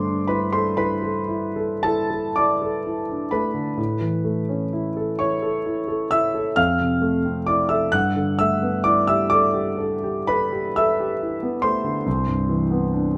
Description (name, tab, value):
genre	classical, impressionist solo piano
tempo	36-48 BPM (dotted quarters)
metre	9/8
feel	rubato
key	G major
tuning	A4 = 439 Hz
part	warm concert grand piano	solo	0.0-13.2 s	C2 to F#6	-22 LUFS	equal	none
room	light reverb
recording	close, detailed microphones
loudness	-22 LUFS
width	mono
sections	0.0-13.2 A section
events	none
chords	0.0 G69; 3.8 Aadd9; 6.6 Fmaj7; 7.9 G69; 12.1 Cmaj9